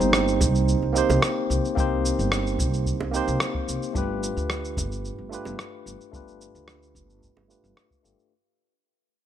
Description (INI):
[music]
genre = sunset chillout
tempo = 110 BPM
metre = 4/4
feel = straight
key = unclear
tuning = A4 = 440 Hz
[part]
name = barky tine electric piano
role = accompaniment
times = 0.0-8.3 s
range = A3 to C5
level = -26 LUFS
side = moving between left 7 dB and right 6 dB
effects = auto-pan, low-pass filter, tape echo
[part]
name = upright bass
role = bass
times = 0.0-8.1 s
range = G1 to D2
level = -26 LUFS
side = equal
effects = tube saturation
[part]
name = electronic shaker and rim click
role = drums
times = 0.0-8.3 s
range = none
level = -27 LUFS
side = equal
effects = none
[part]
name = electronic kick drum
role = drums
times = 0.4-8.0 s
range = none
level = -27 LUFS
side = equal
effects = none
[part]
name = bongos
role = percussion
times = 0.4-7.5 s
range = none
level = -32 LUFS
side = right 6 dB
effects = none
[sound]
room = light reverb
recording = none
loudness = -22 LUFS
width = side -10 dB against mid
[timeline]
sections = 0.0-8.3 A section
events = fade-out 0.0-8.3; filter sweep on tine electric piano 0.0-8.3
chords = 0.0 Cm7; 4.0 G9